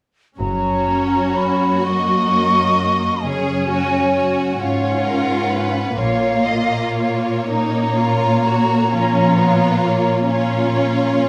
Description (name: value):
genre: classical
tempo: 37-45 BPM (dotted quarters)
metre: 12/8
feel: rubato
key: F# major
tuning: A4 = 439 Hz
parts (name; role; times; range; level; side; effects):
- rich studio violin section; melody; 0.4-11.3 s; A#4 to D#5; -26 LUFS; equal; none
- rich studio violin section; second line; 0.4-11.3 s; D#4 to G#4; -27 LUFS; equal; none
- silver concert flute; second line; 0.4-11.1 s; E#5 to C#6; -23 LUFS; equal; none
- rich studio viola section; accompaniment; 0.4-11.3 s; A#3 to C#4; -25 LUFS; equal; none
- concert harp; arpeggios; 0.4-11.3 s; F#2 to C#5; -28 LUFS; equal; none
- clear studio cello section; bass; 0.4-11.3 s; F#2 to A#2; -24 LUFS; equal; none
- clear studio double bass section; bass; 0.4-6.9 s; F#1 to A#1; -30 LUFS; equal; none
room: wet recital hall reverb, RT60 1.6 s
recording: none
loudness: -18 LUFS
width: mono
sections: 0.4-11.3 A section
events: none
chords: 0.4 F#; 6.0 A#m